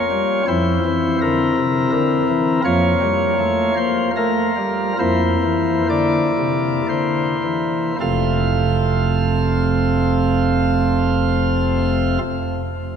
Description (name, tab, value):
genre	classical, chorale-style piece for pipe organ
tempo	52-84 BPM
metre	3/4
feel	rubato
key	F major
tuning	A4 = 441 Hz
part	pipe organ, sparkling flutes	solo	0.0-12.2 s	F1 to F5	-16 LUFS	equal	none
room	wet cathedral reverb, RT60 4.9 s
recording	none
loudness	-16 LUFS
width	side -7 dB against mid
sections	0.0-8.0 A section; 8.0-11.4 B section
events	slowing down 1.6-8.0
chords	0.5 C7/F; 2.6 Bbm/F; 5.0 C7/F; 8.0 F